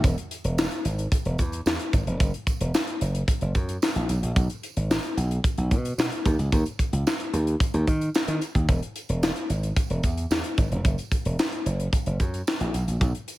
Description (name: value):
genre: early-eighties boogie funk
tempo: 111 BPM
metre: 4/4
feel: straight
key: unclear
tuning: A4 = 440 Hz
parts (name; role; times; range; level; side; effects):
- slap bass; bass; 0.0-13.1 s; E1 to Eb3; -25 LUFS; equal; none
- tight funk drum kit; drums; 0.0-13.4 s; handclaps, hi-hat, kick drum, snare drum; -25 LUFS; equal; gated reverb
- tambourine; percussion; 0.0-13.4 s; none; -44 LUFS; right 9 dB; none
room: small room ambience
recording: none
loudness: -23 LUFS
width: side -17 dB against mid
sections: 0.0-13.4 A section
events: none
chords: none